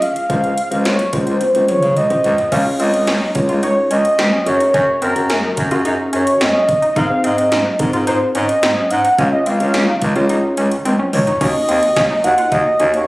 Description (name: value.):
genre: synth-pop.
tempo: 108 BPM.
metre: 4/4.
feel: straight.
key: unclear.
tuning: A4 = 438 Hz.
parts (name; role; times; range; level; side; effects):
warm velvety synth lead; melody; 0.0-13.1 s; Bb4 to Gb5; -16 LUFS; equal; chorus, slapback echo.
mellow tine electric piano; accompaniment; 0.0-13.0 s; C4 to Eb5; -21 LUFS; equal; medium stereo tremolo.
80s electronic pad drums; drums; 0.0-13.1 s; crash cymbal, hi-hat, kick drum, snare drum, toms; -22 LUFS; equal; gated reverb on snare and toms.
clear bass clarinet; bass; 0.3-13.0 s; Db2 to Db3; -20 LUFS; equal; none.
wide unison pluck; arpeggios; 2.5-13.0 s; C4 to F4; -23 LUFS; equal; slapback echo.
room: moderate plate reverb, RT60 2.2 s.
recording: recorded on a phone in the room, studio reverb, compression.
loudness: -13 LUFS.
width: side -20 dB against mid.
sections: 0.0-2.5 A section; 2.5-11.4 B section; 11.4-13.1 C section.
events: drum fill 1.4-2.5, 10.9-11.4.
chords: 0.0 Dbmaj7; 4.5 Gbadd9; 7.0 Abadd9; 9.2 Db; 11.4 Ebm.